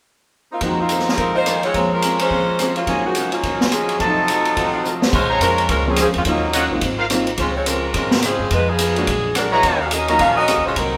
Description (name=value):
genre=jazz, big band swing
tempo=213 BPM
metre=4/4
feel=swing 61% on 8ths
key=Bb minor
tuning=A4 = 440 Hz
part: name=warm saxophone section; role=melody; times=0.5-11.0 s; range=Db3 to F5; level=-22 LUFS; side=equal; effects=none
part: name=archtop guitar, miked and amplified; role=accompaniment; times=0.6-11.0 s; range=F2 to C5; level=-30 LUFS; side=equal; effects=none
part: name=warm baby grand piano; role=accompaniment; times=0.6-10.2 s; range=F2 to C5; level=-28 LUFS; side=equal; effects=none
part: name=warm trumpet section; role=stabs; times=0.6-7.1, 9.5-10.5 s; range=Db4 to Eb6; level=-24 LUFS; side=equal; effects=none
part: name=swinging big-band drum kit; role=drums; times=0.6-10.8 s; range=crash cymbal, hi-hat, kick drum, ride cymbal, rim click, snare drum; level=-24 LUFS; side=equal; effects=none
part: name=upright bass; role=bass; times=5.1-11.0 s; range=Ab1 to Ab2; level=-28 LUFS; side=equal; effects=none
room=wet large studio reverb, RT60 1.4 s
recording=band playing live in one room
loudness=-18 LUFS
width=mono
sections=0.6-5.1 A section; 5.1-11.0 B section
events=drum fill 4.8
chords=0.0 N.C.; 0.6 F7sus4; 1.7 Bbm9/F; 2.9 Ebm11; 4.0 F7b9; 5.1 Bbm9; 6.3 Ebm9; 6.8 Ab13; 7.4 Dbmaj7; 8.5 Fm7b5; 9.1 Bb7alt; 9.6 Ebm7